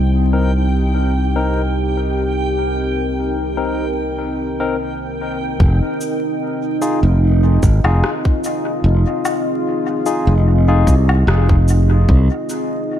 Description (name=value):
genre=ambient dub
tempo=74 BPM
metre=4/4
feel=swing 54% on 16ths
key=F minor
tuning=A4 = 440 Hz
part: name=deep dark ambient pad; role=sustained chords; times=0.0-13.0 s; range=C4 to Eb5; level=-21 LUFS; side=equal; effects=chorus, built-in reverb
part: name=modern bright fingered electric bass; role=bass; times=0.0-12.3 s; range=F1 to C2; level=-15 LUFS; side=equal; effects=none
part: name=backwards swelling texture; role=texture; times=0.0-5.6 s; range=G5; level=-29 LUFS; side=right 2 dB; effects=built-in reverb
part: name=barky tine electric piano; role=stabs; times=0.3-10.9 s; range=C4 to Bb4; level=-25 LUFS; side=left 4 dB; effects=medium stereo tremolo, dub echo
part: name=electronic kick drum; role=drums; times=5.6-12.3 s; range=none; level=-14 LUFS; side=equal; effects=none
part: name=electronic cabasa, woodblock and rim click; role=drums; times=6.0-12.7 s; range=none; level=-26 LUFS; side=left 1 dB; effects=dub echo
room=light reverb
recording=vinyl crackle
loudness=-14 LUFS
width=side -11 dB against mid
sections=0.0-5.6 A section; 5.6-13.0 B section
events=none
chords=0.0 Cm7; 5.6 Fm7; 12.1 Cm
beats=0.74 1.55 | 2.36 3.17 3.98 4.79 | 5.60 6.42 7.23 8.04 | 8.85 9.66 10.47 11.28 | 12.09 12.90